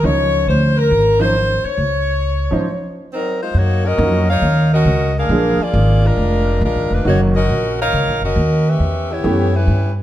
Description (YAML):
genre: jazz, big band swing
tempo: 137 BPM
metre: 4/4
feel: swing 66% on 8ths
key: Db major, F# major from 3.5 s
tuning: A4 = 440 Hz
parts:
  - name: warm saxophone section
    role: melody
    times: 0.0-9.9 s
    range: Gb3 to E#5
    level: -18 LUFS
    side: left 1 dB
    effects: none
  - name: clear upright piano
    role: accompaniment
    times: 0.0-9.5 s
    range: D#3 to Db5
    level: -20 LUFS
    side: right 1 dB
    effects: none
  - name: upright bass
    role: bass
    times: 0.0-10.0 s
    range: E#1 to Ab2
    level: -16 LUFS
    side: equal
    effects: none
room: moderate recital hall reverb, RT60 1.5 s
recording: dark, warm production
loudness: -14 LUFS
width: side -13 dB against mid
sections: 0.0-3.5 A section; 3.5-10.0 B section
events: stop 2.7-3.5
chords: 0.0 Dbmaj9; 3.5 F#6; 5.3 A#7; 7.1 D#m7; 8.8 A9